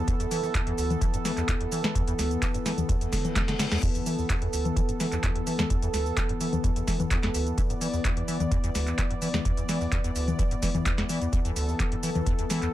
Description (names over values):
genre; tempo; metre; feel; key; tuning
acid house; 128 BPM; 4/4; straight; unclear; A4 = 440 Hz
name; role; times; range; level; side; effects
warm analog pad; sustained chords; 0.0-12.7 s; E3 to D5; -31 LUFS; equal; chorus, sidechain pumping
deep acid bass; riff; 0.0-12.7 s; D2 to E3; -30 LUFS; equal; wide subtle chorus, cassette tape, ping-pong delay
booming analog drum machine; drums; 0.1-12.7 s; congas, crash cymbal, handclaps, hi-hat, shaker, snare drum; -31 LUFS; left 2 dB; none
electronic kick drum; drums; 0.1-12.4 s; none; -28 LUFS; equal; none
reverse cymbal; sound effects; 3.2-3.8 s; none; -37 LUFS; left 4 dB; none
room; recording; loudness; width
light reverb; none; -24 LUFS; side -14 dB against mid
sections
0.0-12.7 A section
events
reverse cymbal 3.2-3.8; drum fill 3.4-3.8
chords
0.0 E5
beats
| 0.08 0.55 1.02 1.48 | 1.95 2.42 2.89 3.36 | 3.83 4.30 4.77 5.23 | 5.70 6.17 6.64 7.11 | 7.58 8.05 8.52 8.98 | 9.45 9.92 10.39 10.86 | 11.33 11.80 12.27 12.73